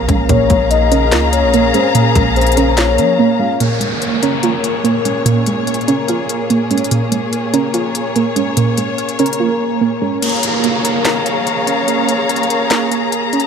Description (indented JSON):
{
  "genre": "hip hop, trap",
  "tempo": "145 BPM",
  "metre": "4/4",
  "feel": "half-time",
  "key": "Bb minor",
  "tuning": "A4 = 440 Hz",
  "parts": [
    { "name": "soft round pluck", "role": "accompaniment", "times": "0.0-10.2 s", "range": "Bb2 to F4", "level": "-17 LUFS", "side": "right 4 dB", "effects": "chorus, low-pass filter" },
    { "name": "dark symphonic string section", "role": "sustained chords", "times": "0.0-13.5 s", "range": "Bb2 to Bb5", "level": "-19 LUFS", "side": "left 3 dB", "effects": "none" },
    { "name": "soft electric-piano-like synth keys", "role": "arpeggios", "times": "0.0-13.5 s", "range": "Bb3 to Bb4", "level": "-18 LUFS", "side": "right 2 dB", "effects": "chorus, phaser, low-pass filter, ping-pong delay" },
    { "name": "warm 808-style bass", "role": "bass", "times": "0.0-3.2 s", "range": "Bb1 to F3", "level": "-17 LUFS", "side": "equal", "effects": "none" },
    { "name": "trap drum kit", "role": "drums", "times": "0.1-13.5 s", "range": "crash cymbal, finger snaps, hi-hat, kick drum, snare drum", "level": "-19 LUFS", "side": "left 2 dB", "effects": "none" },
    { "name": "soft octave-layered synth lead", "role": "second line", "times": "0.3-3.6 s", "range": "Bb4 to F5", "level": "-17 LUFS", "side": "left 7 dB", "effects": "chorus, tremolo, ping-pong delay" },
    { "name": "downlifter", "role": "sound effects", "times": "3.6-6.9, 10.2-13.5 s", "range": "none", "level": "-24 LUFS", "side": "equal", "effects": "none" }
  ],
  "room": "light reverb, digital ambience",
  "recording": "none",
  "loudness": "-12 LUFS",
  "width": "side -7 dB against mid",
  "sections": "0.0-3.6 A section; 3.6-10.2 B section; 10.2-13.5 C section",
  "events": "drums muted 3.2-3.6; silent gap 9.4-10.2; kick muted 10.2-13.5",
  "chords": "0.0 Bbm7"
}